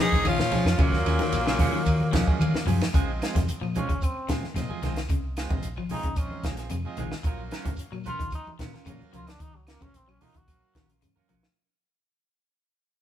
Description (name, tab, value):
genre	afrobeat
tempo	111 BPM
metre	4/4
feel	straight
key	unclear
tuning	A4 = 441 Hz
part	raspy tenor saxophone	melody	0.0-2.7 s	Bb3 to Ab4	-28 LUFS	equal	none
part	bright alto saxophone	second line	0.0-2.7 s	Gb3 to Eb4	-34 LUFS	right 3 dB	none
part	raspy baritone saxophone	second line	0.0-2.7 s	Bb2 to Ab3	-33 LUFS	left 5 dB	none
part	electric guitar at the edge of break-up	arpeggios	0.0-11.5 s	C3 to Gb3	-33 LUFS	left 6 dB	none
part	semi-hollow electric guitar	stabs	0.0-11.5 s	F3 to Bb4	-36 LUFS	right 6 dB	none
part	combo organ	accompaniment	0.1-11.4 s	F3 to Ab5	-39 LUFS	right 3 dB	spring reverb
part	hollow-body short-scale fingered electric bass	bass	0.1-11.4 s	Ab1 to Eb3	-30 LUFS	equal	none
part	compact cocktail drum kit	drums	0.1-11.6 s	hi-hat, kick drum, ride cymbal, snare drum	-27 LUFS	equal	none
part	congas	percussion	0.1-11.4 s	none	-34 LUFS	right 3 dB	none
part	claves	percussion	0.3-11.6 s	none	-46 LUFS	equal	none
part	shekere	percussion	0.3-11.4 s	none	-37 LUFS	equal	none
part	trombone with metal mute	melody	3.8-10.9 s	Gb3 to Gb4	-36 LUFS	equal	none
room	light reverb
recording	band playing live in one room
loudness	-24 LUFS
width	side -11 dB against mid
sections	0.0-2.9 A section; 2.9-11.6 B section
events	transistor combo organ fill 1.9-2.9; fade-out 2.9-11.6; trombone solo 2.9-11.6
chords	0.0 Bbm9; 0.8 Ebm11; 2.9 Dbmaj7; 7.3 Ebm9/Bb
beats	0.25 | 0.79 1.33 1.87 2.40 | 2.94 3.48 4.02 4.56 | 5.10 5.63 6.17 6.71 | 7.25 7.79 8.33 8.87 | 9.41 9.95 10.49 11.03